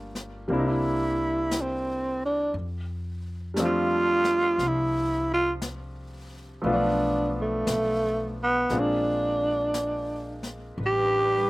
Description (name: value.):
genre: jazz ballad.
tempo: 58 BPM.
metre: 4/4.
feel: swing 68% on 8ths.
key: unclear.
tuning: A4 = 440 Hz.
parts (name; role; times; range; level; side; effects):
clear grand piano; accompaniment; 0.0-10.8 s; F3 to F4; -30 LUFS; left 1 dB; none.
upright bass; bass; 0.0-11.5 s; G1 to F2; -33 LUFS; left 1 dB; none.
jazz brush drum kit; drums; 0.2-11.5 s; brushed snare drum, hi-hat, snare drum; -35 LUFS; left 1 dB; none.
growling tenor saxophone; melody; 0.6-11.5 s; A3 to G4; -24 LUFS; right 1 dB; none.
dark studio cello section; sustained chords; 10.8-11.5 s; G3 to B4; -34 LUFS; right 1 dB; none.
room: little or no reverb.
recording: recorded outdoors, with no room sound.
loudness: -23 LUFS.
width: side -19 dB against mid.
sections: 0.0-11.5 A section.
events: tenor saxophone solo 0.0-11.5.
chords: 0.5 C9; 2.5 F69; 6.6 Bm7b5; 8.7 Bb9; 10.8 A9sus4.